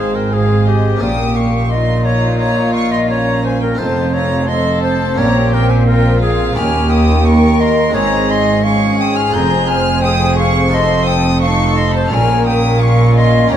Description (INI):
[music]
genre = classical, baroque-style concerto movement with solo episodes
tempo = 86 BPM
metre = 4/4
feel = straight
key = unclear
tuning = A4 = 440 Hz
[part]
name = bright baroque flute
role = melody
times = 0.0-13.6 s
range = G4 to Bb5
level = -19 LUFS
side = left 2 dB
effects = none
[part]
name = warm chamber violin section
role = melody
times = 0.0-13.6 s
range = Eb5 to G6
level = -21 LUFS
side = equal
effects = none
[part]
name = rich chamber violin section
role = second line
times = 0.0-13.6 s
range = F4 to C5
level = -22 LUFS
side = left 2 dB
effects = none
[part]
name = dark chamber viola section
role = accompaniment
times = 0.0-13.6 s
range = Bb3 to Eb4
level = -21 LUFS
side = right 2 dB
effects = none
[part]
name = harpsichord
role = accompaniment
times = 0.0-13.6 s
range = Eb2 to A4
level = -26 LUFS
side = equal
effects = none
[part]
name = dark chamber double bass section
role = bass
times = 0.0-13.6 s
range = F1 to Eb2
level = -16 LUFS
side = right 2 dB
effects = none
[part]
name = warm studio cello section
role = bass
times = 0.0-13.6 s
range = Eb2 to Bb2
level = -18 LUFS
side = equal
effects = none
[sound]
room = wet recital hall reverb, RT60 1.7 s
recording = dark, warm production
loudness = -11 LUFS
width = side -10 dB against mid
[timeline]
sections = 0.0-13.6 A section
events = none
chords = 0.0 Ab; 1.0 Bbm; 3.8 F7; 5.2 Bbm; 6.6 Eb7; 8.0 Ab; 9.3 Fm; 10.7 F7; 12.1 Bbm7